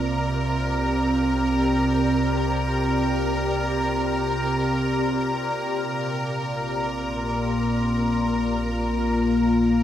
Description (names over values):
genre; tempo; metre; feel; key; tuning
ambient; free time; none; none; unclear; A4 = 440 Hz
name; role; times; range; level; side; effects
glassy FM pad; sustained chords; 0.0-9.8 s; Bb2 to D5; -23 LUFS; equal; ensemble chorus, built-in reverb, shimmer reverb
deep rumbling drone; bass; 0.0-9.8 s; Bb1 to C2; -31 LUFS; equal; built-in reverb
overtone-sweeping drone; drone; 0.0-9.8 s; Bb3 to F4; -36 LUFS; left 2 dB; chorus, built-in reverb
clear studio violin section; texture; 0.0-9.8 s; Bb4 to Bb5; -28 LUFS; equal; shimmer reverb
room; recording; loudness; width
wet spring reverb, RT60 2.7 s; none; -21 LUFS; side -11 dB against mid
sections
0.0-9.8 A section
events
fade-in on synth drone 0.0-9.8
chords
0.0 Csus2; 5.8 Bb